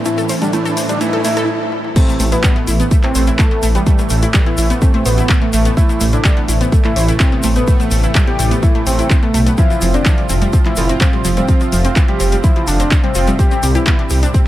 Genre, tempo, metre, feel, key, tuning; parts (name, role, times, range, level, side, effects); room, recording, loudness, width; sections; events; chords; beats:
melodic techno; 126 BPM; 4/4; straight; A minor; A4 = 444 Hz
deep dark ambient pad; sustained chords; 0.0-14.5 s; A3 to E5; -29 LUFS; left 1 dB
analog synth brass; stabs; 0.0-14.5 s; A2 to F4; -22 LUFS; right 3 dB; chorus, sidechain pumping, tape echo
swarming drone; drone; 0.0-14.5 s; A2 to E3; -30 LUFS; left 2 dB
riser; sound effects; 0.0-1.5 s; -24 LUFS; equal
fat analog lead; melody; 0.1-14.0 s; G3 to G4; -20 LUFS; equal; phaser, sidechain pumping, tape echo
analog pluck; arpeggios; 0.1-14.4 s; E3 to C5; -22 LUFS; equal; chorus, sidechain pumping, tape echo
house drum kit; drums; 0.1-14.4 s; crash cymbal, handclaps, hi-hat, toms; -23 LUFS; left 1 dB; sidechain pumping on hats, high-pass filter on hats, high-pass filter on snare, sidechain pumping on toms, high-pass filter on toms, sidechain pumping on cymbals, high-pass filter on cymbals
tube shaker; percussion; 0.1-14.4 s; -27 LUFS; left 4 dB
electronic kick drum; drums; 2.0-14.4 s; -13 LUFS; equal
dark detuned saw bass; bass; 2.2-14.3 s; F1 to C2; -16 LUFS; equal; sidechain pumping
little or no reverb; -11 LUFS; side -14 dB against mid
0.0-2.0 A section; 2.0-14.5 B section
build-up 0.0-2.0; riser 0.0-1.5; filter sweep on analog synth lead 0.0-2.0; filter sweep on analog polysynth 0.0-2.0; stop 1.5-2.0; drum fill 1.7; drop 2.0-14.5
0.0 Am; 2.0 Amadd9; 9.6 Fmaj7; 13.4 C6
| 0.06 0.53 1.01 1.49 | 1.96 2.44 2.91 3.39 | 3.87 4.34 4.82 5.29 | 5.77 6.25 6.72 7.20 | 7.67 8.15 8.63 9.10 | 9.58 10.06 10.53 11.01 | 11.48 11.96 12.44 12.91 | 13.39 13.87 14.34